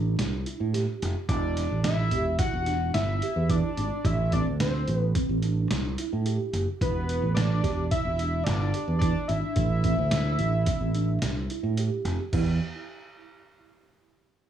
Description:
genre	progressive instrumental, band music in an uneven meter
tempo	109 BPM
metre	5/4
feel	straight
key	unclear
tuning	A4 = 440 Hz
part	mellow tine electric piano	arpeggios	0.0-12.6 s	C4 to G4	-34 LUFS	right 2 dB	ensemble chorus, tape echo
part	fingered electric bass	bass	0.0-12.6 s	E1 to A2	-27 LUFS	right 2 dB	none
part	trip hop sampler-style drum kit	drums	0.2-12.5 s	crash cymbal, hi-hat, kick drum, snare drum	-30 LUFS	right 1 dB	none
part	fat analog lead	melody	1.3-11.8 s	B4 to F#5	-30 LUFS	left 2 dB	chorus
room	light reverb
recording	studio ambience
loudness	-24 LUFS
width	side -10 dB against mid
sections	0.0-12.3 A section; 12.3-14.5 B section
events	none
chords	0.0 Am7; 1.3 Em7; 4.1 Am7; 6.8 Em7; 9.6 Am7; 12.3 N.C.

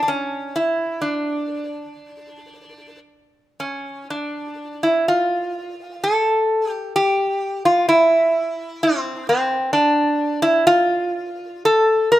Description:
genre	celtic folk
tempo	56-65 BPM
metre	3/4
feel	rubato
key	D minor from 4.1 s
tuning	A4 = 442 Hz
part	metal-body resonator slide guitar	solo	0.0-12.2 s	C4 to Bb4	-17 LUFS	equal	none
room	light reverb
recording	close, detailed microphones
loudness	-17 LUFS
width	side -14 dB against mid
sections	0.0-4.1 A section; 4.1-12.2 B section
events	none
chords	none

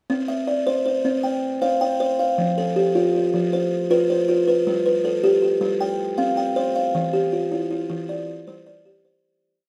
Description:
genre	southern african traditional, mbira-style interlocking cycle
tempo	105 BPM (dotted quarters)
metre	12/8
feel	straight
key	C major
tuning	A4 = 440 Hz
part	buzzing kalimba	solo	0.1-9.4 s	E3 to G5	-22 LUFS	equal	none
room	light reverb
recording	close, detailed microphones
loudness	-21 LUFS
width	mono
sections	0.1-9.2 A section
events	fade-out 6.9-9.2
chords	0.1 C; 2.4 F; 4.7 G; 5.8 C5; 6.9 Em; 8.1 G5

